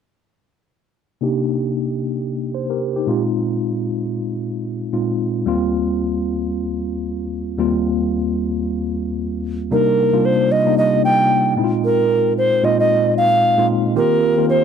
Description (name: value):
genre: amapiano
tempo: 113 BPM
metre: 4/4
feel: swing 58% on 16ths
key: Eb major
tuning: A4 = 440 Hz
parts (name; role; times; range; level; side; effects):
- tine electric piano; accompaniment; 1.2-14.6 s; Eb2 to C5; -19 LUFS; left 1 dB; medium stereo tremolo, low-pass filter
- bright reedy alto ocarina; melody; 9.7-14.6 s; Bb4 to G5; -16 LUFS; right 2 dB; analog delay
room: little or no reverb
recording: dry, gritty hardware recording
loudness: -16 LUFS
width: side -7 dB against mid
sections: 1.2-9.7 A section; 9.7-14.6 B section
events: filter sweep on tine electric piano 1.2-9.7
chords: 1.2 Cm9; 3.1 Bb7sus4; 5.5 Eb6; 9.7 Cm9; 11.6 Bb7sus4; 14.0 Eb6